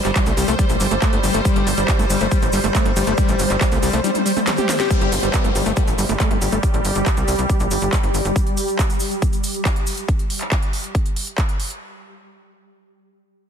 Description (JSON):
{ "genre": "psychedelic trance", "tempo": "139 BPM", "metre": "4/4", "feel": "straight", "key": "unclear", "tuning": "A4 = 440 Hz", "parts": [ { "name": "swarming drone", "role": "sustained chords", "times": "0.0-10.1 s", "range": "G3 to C5", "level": "-23 LUFS", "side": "equal", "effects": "built-in reverb, sidechain pumping" }, { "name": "overdriven acid bass", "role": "riff", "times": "0.0-6.6 s", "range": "F#3 to G4", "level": "-23 LUFS", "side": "moving between left 6 dB and right 5 dB", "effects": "distortion, auto-pan, sidechain pumping, ping-pong delay" }, { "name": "tight sequencer bass", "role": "bass", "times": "0.0-8.3 s", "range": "G1 to C2", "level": "-23 LUFS", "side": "equal", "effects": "none" }, { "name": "techno drum kit", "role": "drums", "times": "0.0-11.8 s", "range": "handclaps, hi-hat, snare drum, toms", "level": "-26 LUFS", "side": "equal", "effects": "none" }, { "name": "egg shaker", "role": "percussion", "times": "0.0-10.1 s", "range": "none", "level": "-31 LUFS", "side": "left 1 dB", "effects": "none" }, { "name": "electronic kick drum", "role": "drums", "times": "0.2-11.5 s", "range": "none", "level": "-20 LUFS", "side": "equal", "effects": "none" }, { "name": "downlifter", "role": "sound effects", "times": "4.9-8.4 s", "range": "none", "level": "-30 LUFS", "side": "equal", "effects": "none" } ], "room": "light reverb", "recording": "dense, heavily limited modern master", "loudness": "-16 LUFS", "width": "side -8 dB against mid", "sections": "0.0-4.9 A section; 4.9-11.8 B section", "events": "drop 0.0-4.9; drum fill 4.0-4.9; filter sweep on acid bass 4.9-6.6; filter sweep on synth drone 4.9-10.1", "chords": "none", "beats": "0.16 0.59 1.02 | 1.45 1.88 2.31 2.75 | 3.18 3.61 4.04 4.47 | 4.91 5.34 5.77 6.20 | 6.63 7.06 7.50 7.93 | 8.36 8.79 9.22 9.65 | 10.09 10.52 10.95 11.38" }